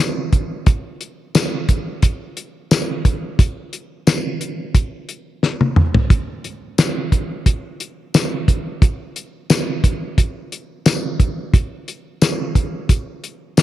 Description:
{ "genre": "blues", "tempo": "88 BPM", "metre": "4/4", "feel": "swing 54% on 16ths", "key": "none", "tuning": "none", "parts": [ { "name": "cloth-damped thuddy drum kit", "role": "drums", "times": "0.3-13.6 s", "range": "hi-hat, kick drum, snare drum, tambourine, toms", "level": "-15 LUFS", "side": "equal", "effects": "none" } ], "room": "moderate plate reverb, RT60 2.7 s", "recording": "1960s-style stereo", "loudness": "-16 LUFS", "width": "side -13 dB against mid", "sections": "0.0-13.6 A section", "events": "drum fill 5.4-6.1", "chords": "none" }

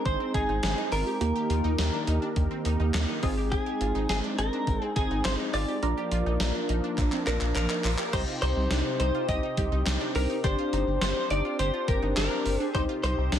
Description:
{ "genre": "synth-pop", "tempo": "104 BPM", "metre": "4/4", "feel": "straight", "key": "unclear", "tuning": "A4 = 441 Hz", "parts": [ { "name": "direct-recorded clean electric guitar", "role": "melody", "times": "0.0-13.4 s", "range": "Ab4 to Eb5", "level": "-31 LUFS", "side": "equal", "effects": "lush chorus, tape echo" }, { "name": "funky polysynth comp", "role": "accompaniment", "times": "0.0-13.4 s", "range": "Bb3 to C5", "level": "-32 LUFS", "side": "equal", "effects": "chorus" }, { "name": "brassy analog pad", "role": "sustained chords", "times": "0.0-13.4 s", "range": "C3 to Bb4", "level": "-35 LUFS", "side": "equal", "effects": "chorus" }, { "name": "wide unison pluck", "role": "arpeggios", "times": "0.0-13.4 s", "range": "C4 to G4", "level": "-37 LUFS", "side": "right 1 dB", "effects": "phaser, tape echo" }, { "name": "rubbery square bass", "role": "bass", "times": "0.1-13.4 s", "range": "G1 to Eb2", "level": "-28 LUFS", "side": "equal", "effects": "none" }, { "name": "gated 80s digital drum machine", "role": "drums", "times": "0.1-13.4 s", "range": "crash cymbal, handclaps, hi-hat, kick drum, snare drum", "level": "-31 LUFS", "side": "equal", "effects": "gated reverb, gated reverb snare" } ], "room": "light reverb, digital ambience", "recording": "none", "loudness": "-25 LUFS", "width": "side -10 dB against mid", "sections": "0.0-8.1 A section; 8.1-13.4 B section", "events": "drum fill 7.0-8.1", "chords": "0.0 Ab; 1.2 Eb; 3.2 Ab; 5.8 Bb; 8.1 Cm; 10.4 Gsus4; 12.7 Cm" }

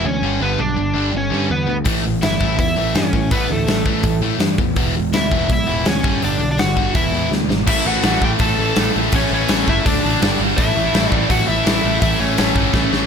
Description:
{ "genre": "punk rock", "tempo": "166 BPM", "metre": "4/4", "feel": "straight", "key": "A mixolydian", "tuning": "A4 = 439 Hz", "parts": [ { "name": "crunchy overdriven guitar", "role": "melody", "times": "0.0-13.1 s", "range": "A3 to A5", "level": "-21 LUFS", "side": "equal", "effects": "none" }, { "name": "sludgy distorted guitar", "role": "riff", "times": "0.0-13.1 s", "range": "G2 to D5", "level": "-23 LUFS", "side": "right 14 dB", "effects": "overdrive" }, { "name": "tight distorted guitar", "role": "riff", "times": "0.0-13.1 s", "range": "E2 to D4", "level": "-24 LUFS", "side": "left 17 dB", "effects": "distortion" }, { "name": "modern bright picked electric bass", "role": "bass", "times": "0.0-13.1 s", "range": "E1 to A2", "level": "-23 LUFS", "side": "equal", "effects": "none" }, { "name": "big rock drum kit", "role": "drums", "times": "1.9-13.0 s", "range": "crash cymbal, hi-hat, kick drum, snare drum", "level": "-19 LUFS", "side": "equal", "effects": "none" }, { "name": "distorted electric guitar", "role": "riff", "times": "7.7-13.1 s", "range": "G2 to D4", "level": "-24 LUFS", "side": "equal", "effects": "distortion" } ], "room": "little or no reverb", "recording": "none", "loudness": "-15 LUFS", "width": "side -7 dB against mid", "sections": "0.0-7.7 A section; 7.7-13.1 B section", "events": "drum fill 7.3-7.7, 12.7-13.1", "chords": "0.2 G; 1.9 A; 4.8 E; 6.0 G; 6.9 E; 7.7 A; 9.8 D5; 10.2 G5; 10.6 A" }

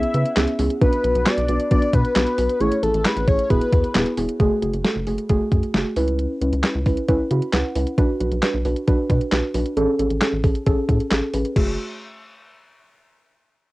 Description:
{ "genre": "synth-pop", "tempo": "134 BPM", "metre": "4/4", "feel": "straight", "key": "F# minor", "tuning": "A4 = 438 Hz", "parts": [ { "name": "fat analog lead", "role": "melody", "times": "0.0-4.1 s", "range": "A4 to E5", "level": "-23 LUFS", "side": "left 2 dB", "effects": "cassette tape" }, { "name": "muted felt-like synth keys", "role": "accompaniment", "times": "0.0-11.8 s", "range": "A3 to B5", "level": "-22 LUFS", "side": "right 1 dB", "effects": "chorus, low-pass filter" }, { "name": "rubbery square bass", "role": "bass", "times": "0.0-11.8 s", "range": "E1 to C#3", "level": "-24 LUFS", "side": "equal", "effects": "tube saturation" }, { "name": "detuned 8-bit digital drum machine", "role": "drums", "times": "0.0-11.7 s", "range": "crash cymbal, handclaps, hi-hat, kick drum, snare drum", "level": "-21 LUFS", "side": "equal", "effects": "overdrive, cassette tape" } ], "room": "light reverb", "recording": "home recording on cassette", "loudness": "-18 LUFS", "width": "side -19 dB against mid", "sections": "0.0-4.4 A section; 4.4-11.6 B section; 11.6-13.4 C section", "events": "synth keys fill 7.1-8.0", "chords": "0.0 C#m7; 0.8 Bm; 2.6 Amaj7; 3.5 Eadd9; 4.4 F#madd9; 6.0 C#m7; 8.0 Bm; 9.8 Amaj7; 11.6 F#madd9" }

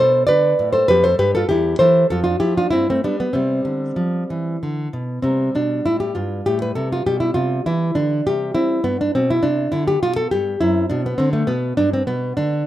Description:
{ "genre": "classical, baroque-style dance for nylon-string guitar", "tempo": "94-104 BPM", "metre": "3/4", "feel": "rubato", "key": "C major", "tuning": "A4 = 445 Hz", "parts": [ { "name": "nylon-string guitar", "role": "solo", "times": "0.0-12.7 s", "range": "E2 to D5", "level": "-16 LUFS", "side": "equal", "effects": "none" } ], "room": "light reverb", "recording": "recorded outdoors, with no room sound", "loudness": "-16 LUFS", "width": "side -13 dB against mid", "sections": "0.0-5.2 A section; 5.2-12.7 B section", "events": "none", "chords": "0.0 G (rootless); 0.9 Fadd9; 1.5 C/E; 2.1 Fmaj13; 2.7 G; 3.3 C; 5.2 C5; 7.1 G/B; 8.3 C; 8.9 G; 10.6 D7/F#; 11.8 G" }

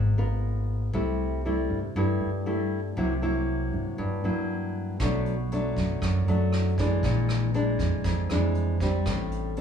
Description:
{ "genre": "bossa nova", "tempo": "118 BPM", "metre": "4/4", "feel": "straight", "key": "unclear", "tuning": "A4 = 439 Hz", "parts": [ { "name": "nylon-string guitar", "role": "accompaniment", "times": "0.0-9.6 s", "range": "F2 to A#4", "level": "-26 LUFS", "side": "left 1 dB", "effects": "none" }, { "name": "fingered electric bass", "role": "bass", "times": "0.0-9.6 s", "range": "G#1 to G2", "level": "-29 LUFS", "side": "right 1 dB", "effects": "none" }, { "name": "vintage brush drum kit", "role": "drums", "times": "5.0-9.6 s", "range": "hi-hat, kick drum, rim click", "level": "-33 LUFS", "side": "equal", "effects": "none" } ], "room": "moderate large studio reverb, RT60 0.8 s", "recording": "band playing live in one room, small room reverb", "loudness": "-24 LUFS", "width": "side -8 dB against mid", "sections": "0.0-9.6 A section", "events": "none", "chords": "0.0 C#6 (rootless); 0.9 C6; 3.0 C7#11; 5.0 Bm7; 7.0 Bb7#11; 9.1 Am7" }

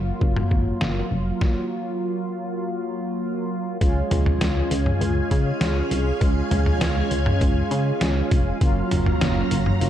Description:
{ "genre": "synth-pop", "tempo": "100 BPM", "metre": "4/4", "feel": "straight", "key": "Db major", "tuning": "A4 = 440 Hz", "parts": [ { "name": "mellow synth brass", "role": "accompaniment", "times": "0.0-9.9 s", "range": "Gb3 to F4", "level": "-26 LUFS", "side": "right 1 dB", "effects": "chorus" }, { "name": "solid FM bass", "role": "bass", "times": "0.0-9.9 s", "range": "F1 to Db3", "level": "-24 LUFS", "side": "equal", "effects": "none" }, { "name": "trip hop sampler-style drum kit", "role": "drums", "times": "0.2-9.9 s", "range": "hi-hat, kick drum, snare drum, toms", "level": "-22 LUFS", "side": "equal", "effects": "none" }, { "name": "ensemble organ-string", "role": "sustained chords", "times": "3.8-9.9 s", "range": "Gb3 to Bb5", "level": "-28 LUFS", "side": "equal", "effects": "ensemble chorus" } ], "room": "light reverb", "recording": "dark, warm production", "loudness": "-20 LUFS", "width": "side -11 dB against mid", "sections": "0.0-3.8 A section; 3.8-9.9 B section", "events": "stop 1.4-3.8", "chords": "0.0 Gbmaj7; 3.8 Db; 8.6 Gbmaj7" }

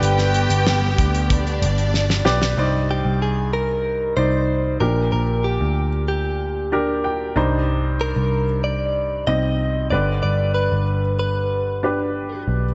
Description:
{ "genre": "piano-driven pop", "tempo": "94 BPM", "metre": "4/4", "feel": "straight", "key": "C minor", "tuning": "A4 = 440 Hz", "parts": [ { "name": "direct-recorded clean electric guitar", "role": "melody", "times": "0.0-12.4 s", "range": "G4 to Eb5", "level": "-27 LUFS", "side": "equal", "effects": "none" }, { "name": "warm symphonic violin section", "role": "second line", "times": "0.0-2.6 s", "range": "D4 to G5", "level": "-27 LUFS", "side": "equal", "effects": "none" }, { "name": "clear upright piano", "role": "accompaniment", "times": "0.0-12.7 s", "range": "G2 to Bb5", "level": "-26 LUFS", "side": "equal", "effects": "none" }, { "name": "rich studio string section", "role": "sustained chords", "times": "0.0-2.5 s", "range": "B3 to G4", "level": "-32 LUFS", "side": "equal", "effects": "none" }, { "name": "vintage muted picked electric bass", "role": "bass", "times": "0.0-12.7 s", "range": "G1 to D2", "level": "-24 LUFS", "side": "equal", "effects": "none" }, { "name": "damped 70s drum kit", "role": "drums", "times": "0.0-2.6 s", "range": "hi-hat, kick drum, snare drum", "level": "-25 LUFS", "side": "equal", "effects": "none" } ], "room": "moderate lush hall reverb, RT60 2.1 s", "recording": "big arena sound, nothing above 7.8 kHz", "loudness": "-20 LUFS", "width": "mono", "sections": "0.0-2.6 A section; 2.6-12.7 B section", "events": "drum fill 1.9-2.6; upright piano fill 6.7-7.7", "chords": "0.0 G; 2.6 Cmadd9; 4.8 Gm/Bb; 7.4 Cmadd9; 9.9 G" }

